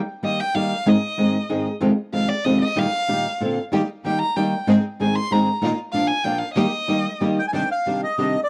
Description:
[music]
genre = tango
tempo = 188 BPM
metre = 3/4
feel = rubato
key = Eb major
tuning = A4 = 441 Hz
[part]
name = warm violin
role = second line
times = 0.2-7.3 s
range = D5 to C6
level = -27 LUFS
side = equal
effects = none
[part]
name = flamenco guitar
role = accompaniment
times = 0.2-8.4 s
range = F2 to Ab4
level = -22 LUFS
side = equal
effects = none
[part]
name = bright symphonic string section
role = stabs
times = 3.7-8.3 s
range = Bb3 to C5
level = -32 LUFS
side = equal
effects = none
[part]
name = bandoneon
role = melody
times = 7.4-8.5 s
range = D5 to Ab5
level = -24 LUFS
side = equal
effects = none
[sound]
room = small room ambience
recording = dry, close 1970s-style studio recording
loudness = -21 LUFS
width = mono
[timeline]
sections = 0.0-7.5 A section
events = violin solo 0.0-7.5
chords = 0.0 Eb; 0.9 Ab; 1.8 Fm7; 2.8 Eb/Bb; 3.4 Bbadd9; 3.7 Eb; 4.7 Ab; 5.6 Bbsus4; 5.9 Bb; 6.6 Eb; 7.5 Cmadd9

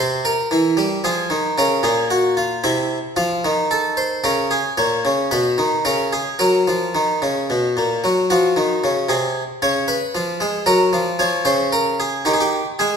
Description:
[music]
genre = classical, baroque-style two-part invention for harpsichord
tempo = 112 BPM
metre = 3/4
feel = straight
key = Bb minor, F# major from 4.8 s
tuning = A4 = 436 Hz
[part]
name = harpsichord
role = solo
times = 0.0-13.0 s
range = Bb2 to C#5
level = -16 LUFS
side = equal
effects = none
[sound]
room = moderate scoring stage reverb, RT60 1.4 s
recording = minimal, uncompressed stereo recording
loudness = -16 LUFS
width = side -6 dB against mid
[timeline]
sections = 0.0-4.8 A section; 4.8-8.0 B section; 8.0-13.0 C section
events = none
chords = 0.0 C; 1.0 Fm; 1.6 Bbm; 2.6 C; 3.2 F; 4.2 Bbm/Db; 4.8 A#m; 5.3 B; 5.9 C#5; 6.4 F#; 8.0 F#5; 9.1 G#/B#; 9.6 C#; 10.7 F#; 11.2 C#; 12.3 D#

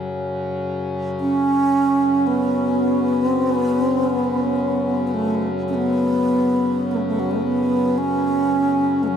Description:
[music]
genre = world meditative, free-time meditation music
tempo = free time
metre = none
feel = none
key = F# minor pentatonic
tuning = A4 = 440 Hz
[part]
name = pedal harmonium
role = drone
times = 0.0-9.2 s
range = F#2 to C#3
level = -25 LUFS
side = left 3 dB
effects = none
[part]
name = bright bass flute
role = melody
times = 1.2-9.2 s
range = F#3 to C#4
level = -18 LUFS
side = right 1 dB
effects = tape echo
[sound]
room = wet huge ambient reverb, RT60 8.2 s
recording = dark, warm production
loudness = -18 LUFS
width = side -8 dB against mid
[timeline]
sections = 0.0-9.2 A section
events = none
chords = none

